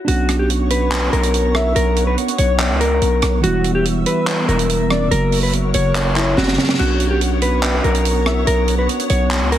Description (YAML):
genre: hip hop, trap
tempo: 143 BPM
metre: 4/4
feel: half-time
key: B harmonic minor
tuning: A4 = 440 Hz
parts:
  - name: mellow tine electric piano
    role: accompaniment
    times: 0.0-9.6 s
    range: C#3 to F#4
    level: -23 LUFS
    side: right 4 dB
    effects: none
  - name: mellow electric guitar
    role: melody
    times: 0.1-9.6 s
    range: E4 to C#5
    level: -20 LUFS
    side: left 1 dB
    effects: ping-pong delay
  - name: glassy FM pad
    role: sustained chords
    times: 0.4-9.6 s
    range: B3 to E6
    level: -26 LUFS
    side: left 2 dB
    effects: ensemble chorus, built-in reverb
  - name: hard-hitting 808-style bass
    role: bass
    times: 0.1-9.6 s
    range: E1 to C#2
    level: -19 LUFS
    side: equal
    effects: none
  - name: tight funk drum kit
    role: drums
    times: 0.1-9.6 s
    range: crash cymbal, handclaps, hi-hat, rim click, snare drum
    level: -21 LUFS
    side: right 1 dB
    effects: none
  - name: warm velvety synth lead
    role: second line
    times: 1.5-1.7, 4.9-8.5 s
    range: C#5 to E5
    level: -26 LUFS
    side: left 2 dB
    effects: chorus, ping-pong delay
room: light reverb, small room ambience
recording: heavily compressed radio sound, multiband compression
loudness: -14 LUFS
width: side -11 dB against mid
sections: 0.1-9.6 A section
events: drum fill 6.4-6.8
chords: 0.1 Bmadd9; 3.4 Em; 5.1 F#; 6.8 Bmadd9